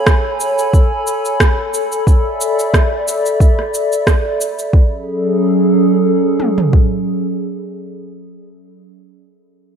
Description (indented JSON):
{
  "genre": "organic downtempo",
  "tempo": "90 BPM",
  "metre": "4/4",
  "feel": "swing 55% on 16ths",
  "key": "F# minor",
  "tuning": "A4 = 440 Hz",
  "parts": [
    { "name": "warbly tape-like pad", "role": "sustained chords", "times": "0.0-8.2 s", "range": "F#3 to B5", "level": "-16 LUFS", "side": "equal", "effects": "chorus, built-in reverb, sidechain pumping" },
    { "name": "electronic rim click and cabasa", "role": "drums", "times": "0.1-4.7 s", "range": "none", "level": "-19 LUFS", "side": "right 2 dB", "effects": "overdrive" },
    { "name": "organic electronic drum kit", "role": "drums", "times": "0.1-6.9 s", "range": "kick drum, toms", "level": "-12 LUFS", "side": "equal", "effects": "overdrive" }
  ],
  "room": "moderate echo chamber reverb, RT60 1.6 s, digital ambience",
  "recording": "dark, warm production",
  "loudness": "-12 LUFS",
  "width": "side -7 dB against mid",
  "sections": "0.0-4.7 A section; 4.7-7.4 B section",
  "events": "none",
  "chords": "0.0 Amaj9; 2.1 E7sus4; 4.7 F#madd9"
}